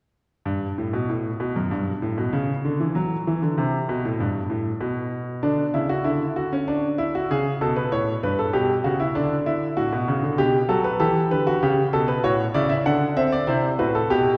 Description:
classical, baroque-style 3-part fugue for grand piano; 97 BPM; 4/4; straight; A4 = 440 Hz
clear concert grand piano; solo; 0.5-14.4 s; F#2 to F#5; -23 LUFS; equal
wet scoring stage reverb, RT60 1.8 s; heard from further back in the room; -23 LUFS; mono
0.5-14.4 A section
0.5 N.C.; 5.4 D; 6.7 E7/D (rootless); 7.9 A7; 9.1 D; 10.4 G/B; 11.6 A7; 12.9 D7

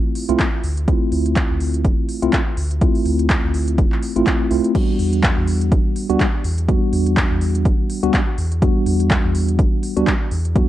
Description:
deep house; 124 BPM; 4/4; swing 57% on 16ths; A4 = 440 Hz
mellow tine electric piano; stabs; 0.0-10.7 s; G3 to F#4; -20 LUFS; equal; medium stereo tremolo, sidechain pumping, tape echo
deep house drum kit; drums; 0.2-10.7 s; crash cymbal, handclaps, hi-hat; -26 LUFS; equal; vintage 12-bit sampler grit
sub bass with octave; bass; 0.3-10.6 s; D1 to E2; -21 LUFS; equal; sidechain pumping
electronic kick drum; drums; 0.4-10.7 s; -18 LUFS; equal; vintage 12-bit sampler grit
digital ambience; -16 LUFS; side -13 dB against mid
0.0-10.7 A section
0.0 Dm9; 4.7 Em9

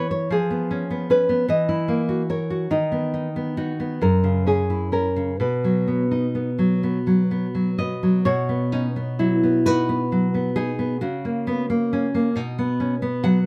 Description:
romantic duo for nylon-string guitar and classical guitar; 41-52 BPM (dotted quarters); 6/8; rubato; B major; A4 = 440 Hz
nylon-string guitar; melody; 0.0-13.5 s; D#4 to D#5; -26 LUFS; equal
nylon-string guitar; accompaniment; 0.0-13.5 s; F#2 to F#5; -23 LUFS; equal
little or no reverb; close, detailed microphones; -22 LUFS; mono
0.0-8.3 A section; 8.3-13.5 B section
0.3 C#7/E#; 1.5 F#7/E; 2.7 B/D#; 4.0 F#5; 5.4 B; 11.0 F#/C#; 12.4 B

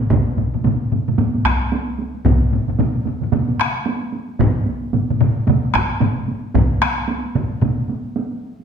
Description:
japanese traditional, taiko drum ensemble; 112 BPM; 4/4; swing 60% on 16ths
solo taiko drums; percussion; 0.0-8.6 s; -24 LUFS; right 4 dB
taiko ensemble; percussion; 0.1-7.8 s; -21 LUFS; left 4 dB
taiko ensemble; percussion; 0.1-7.8 s; -21 LUFS; right 4 dB
taiko ensemble; percussion; 0.1-7.5 s; -21 LUFS; left 1 dB
wet recital hall reverb, RT60 1.3 s; recorded in a church or concert hall; -17 LUFS; side -7 dB against mid
0.1-8.6 A section

